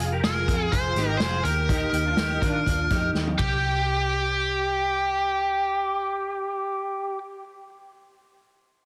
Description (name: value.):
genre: jangly indie pop.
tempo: 124 BPM.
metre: 4/4.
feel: straight.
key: C minor.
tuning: A4 = 440 Hz.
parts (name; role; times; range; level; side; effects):
electric guitar through a small old amp; arpeggios; 0.0-5.0 s; D4 to Bb4; -33 LUFS; equal; ensemble chorus.
vintage muted picked electric bass; bass; 0.0-7.2 s; F1 to Eb3; -31 LUFS; equal; none.
vintage drum kit; drums; 0.0-3.5 s; hi-hat, kick drum, ride cymbal, snare drum, toms; -30 LUFS; equal; none.
biting lead guitar; melody; 0.2-7.2 s; G4 to C5; -28 LUFS; equal; overdrive.
room: moderate echo chamber reverb, RT60 1.3 s.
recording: heavily compressed radio sound, multiband compression.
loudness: -25 LUFS.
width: mono.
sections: 0.0-3.6 A section; 3.6-7.5 B section.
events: drum fill 3.1-3.6.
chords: 0.0 Fm; 1.5 Ebadd9; 3.4 C5.